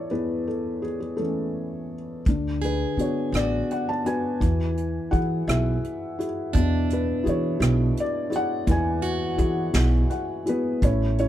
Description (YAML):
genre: acoustic folk-pop ballad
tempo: 56 BPM (dotted quarters)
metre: 6/8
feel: straight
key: unclear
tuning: A4 = 440 Hz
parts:
  - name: felt-muted upright piano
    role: melody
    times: 0.0-11.3 s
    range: E2 to A5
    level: -25 LUFS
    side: left 2 dB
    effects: none
  - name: upright bass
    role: bass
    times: 2.3-11.3 s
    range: A1 to E3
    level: -24 LUFS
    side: right 1 dB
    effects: none
  - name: soft brush drum kit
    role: drums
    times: 2.3-11.3 s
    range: hi-hat, kick drum, rim click, snare drum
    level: -26 LUFS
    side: right 1 dB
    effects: none
  - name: picked plugged-in steel-string acoustic guitar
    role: arpeggios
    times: 2.6-11.1 s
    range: D4 to G#4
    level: -32 LUFS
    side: right 4 dB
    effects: none
room: little or no reverb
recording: dark, warm production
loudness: -22 LUFS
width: side -12 dB against mid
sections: 0.0-2.3 A section; 2.3-10.8 B section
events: felt piano fill 9.7-10.8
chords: 0.0 Amaj7; 2.3 D6; 4.4 Eadd9